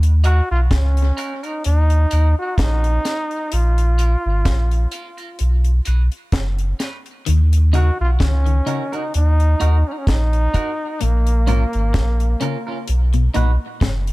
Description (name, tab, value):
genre	dub reggae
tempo	64 BPM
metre	4/4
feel	swing 56% on 16ths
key	Eb minor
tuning	A4 = 437 Hz
part	warm sub bass	bass	0.0-14.1 s	F#1 to Eb2	-15 LUFS	equal	none
part	deep reggae drum kit	drums	0.0-14.1 s	hi-hat, kick drum, snare drum	-22 LUFS	equal	none
part	clean electric guitar	accompaniment	0.2-13.5 s	Db4 to B4	-29 LUFS	right 5 dB	high-pass filter, tape echo
part	clear trombone	melody	0.3-12.9 s	Bb3 to Gb4	-25 LUFS	equal	tape echo
part	electric guitar at the edge of break-up	arpeggios	7.3-14.0 s	Ab2 to Eb3	-27 LUFS	left 7 dB	tape echo
room	studio reverb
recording	none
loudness	-16 LUFS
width	side -20 dB against mid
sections	0.0-14.1 A section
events	break 0.0-7.3; filter sweep on clean electric guitar 11.0-14.1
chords	0.0 Ebm; 3.5 Bbm; 5.4 B; 7.3 Ebm; 11.0 Bbm; 12.9 B